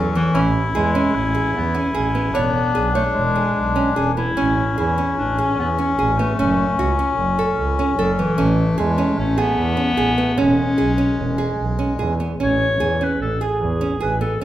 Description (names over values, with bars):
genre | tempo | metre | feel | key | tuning
contemporary instrumental, chamber music in an uneven meter | 150 BPM | 5/4 | straight | A major | A4 = 440 Hz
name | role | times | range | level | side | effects
clear clarinet | melody | 0.0-14.4 s | E3 to C#5 | -22 LUFS | left 2 dB | none
melodica | second line | 0.0-12.1 s | G#3 to E4 | -23 LUFS | left 4 dB | none
nylon-string guitar | arpeggios | 0.0-14.4 s | B3 to C#5 | -22 LUFS | right 3 dB | none
rich double bass | bass | 0.0-14.4 s | E1 to E2 | -23 LUFS | right 2 dB | none
room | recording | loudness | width
wet recital hall reverb, RT60 1.3 s | none | -17 LUFS | side -13 dB against mid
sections
0.0-12.4 A section; 12.4-14.4 B section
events
none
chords
0.3 Amaj7; 2.3 E6; 4.4 Amaj7; 6.4 F#m; 8.4 Amaj7; 10.4 E6; 12.4 Amaj7